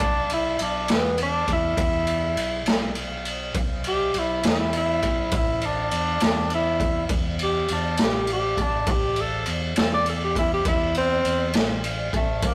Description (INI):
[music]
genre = slow blues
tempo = 68 BPM (dotted quarters)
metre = 12/8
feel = straight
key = unclear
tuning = A4 = 440 Hz
[part]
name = warm tenor saxophone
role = melody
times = 0.0-12.5 s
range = A3 to D5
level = -27 LUFS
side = equal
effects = digital delay
[part]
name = fretless electric bass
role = bass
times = 0.0-12.5 s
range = A1 to E2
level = -32 LUFS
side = equal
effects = none
[part]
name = raw garage drum kit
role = drums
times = 0.0-12.5 s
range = kick drum, ride cymbal, snare drum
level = -27 LUFS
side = equal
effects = none
[sound]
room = light reverb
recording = rough rehearsal-room recording, warm saturation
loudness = -24 LUFS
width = mono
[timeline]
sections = 0.0-12.5 A section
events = tenor saxophone solo 0.0-12.5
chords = 0.0 E5; 5.3 A5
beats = 0.01 0.90 | 1.79 2.67 3.56 4.45 | 5.33 6.22 7.11 8.00 | 8.88 9.77 10.66 11.55 | 12.44